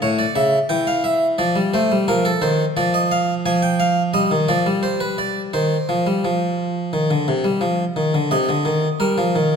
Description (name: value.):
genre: classical, baroque-style two-part invention for harpsichord.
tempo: 87 BPM.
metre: 4/4.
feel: straight.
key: C minor.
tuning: A4 = 440 Hz.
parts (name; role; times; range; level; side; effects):
harpsichord; solo; 0.0-9.6 s; A2 to Ab5; -17 LUFS; equal; none.
room: wet scoring stage reverb, RT60 1.9 s.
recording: none.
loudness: -17 LUFS.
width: side -6 dB against mid.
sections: 0.0-8.3 A section; 8.3-9.6 B section.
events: none.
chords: 0.0 A7; 1.4 Dm/F; 4.1 Ebmaj9; 4.8 G; 5.5 Cm/Eb; 8.3 Cm.